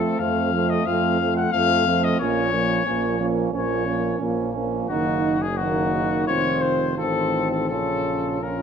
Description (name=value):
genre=classical, brass quintet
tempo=88 BPM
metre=4/4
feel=rubato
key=Bb minor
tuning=A4 = 440 Hz
part: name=clear trumpet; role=melody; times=0.0-8.6 s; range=Gb4 to Gb5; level=-24 LUFS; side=left 8 dB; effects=none
part: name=mellow flugelhorn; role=second line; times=0.0-8.6 s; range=C4 to F4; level=-28 LUFS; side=right 7 dB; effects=none
part: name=clear French horn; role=accompaniment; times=0.0-8.6 s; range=A3 to Db4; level=-27 LUFS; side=left 2 dB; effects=none
part: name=warm trombone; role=accompaniment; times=0.0-8.6 s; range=Bb2 to F3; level=-28 LUFS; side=right 5 dB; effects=none
part: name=warm tuba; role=bass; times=0.0-8.6 s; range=F1 to F2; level=-27 LUFS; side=right 3 dB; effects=none
room=wet recital hall reverb, RT60 1.5 s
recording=dark, warm production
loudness=-20 LUFS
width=side -7 dB against mid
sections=0.0-8.6 A section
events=none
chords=0.0 F; 2.2 Bbm; 4.9 Ebm/Gb; 6.3 F7; 7.7 Bbm